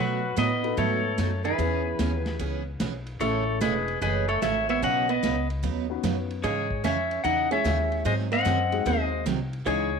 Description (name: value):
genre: country, western swing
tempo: 148 BPM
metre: 4/4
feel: swing 66% on 8ths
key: unclear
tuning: A4 = 441 Hz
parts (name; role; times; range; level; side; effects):
- clean lap steel guitar; melody; 0.0-10.0 s; F#4 to F#5; -27 LUFS; left 4 dB; none
- archtop guitar, miked and amplified; second line; 0.0-10.0 s; E3 to D#4; -31 LUFS; right 12 dB; none
- picked steel-string acoustic guitar; accompaniment; 0.0-9.9 s; B2 to B4; -32 LUFS; right 12 dB; none
- upright bass; bass; 0.0-10.0 s; E1 to B2; -30 LUFS; left 1 dB; none
- vintage drum kit; drums; 0.4-9.8 s; hi-hat, kick drum, ride cymbal, snare drum; -36 LUFS; left 1 dB; none
- dark upright piano; accompaniment; 0.6-9.9 s; G#3 to B4; -32 LUFS; left 12 dB; none
room: light reverb, small room ambience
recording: 1960s-style stereo with parts hard left and right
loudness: -23 LUFS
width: side -6 dB against mid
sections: 0.0-10.0 A section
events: none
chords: 0.0 B7; 1.6 E6; 3.2 Amaj7; 4.8 Badd9; 6.4 C#madd9; 8.1 G#7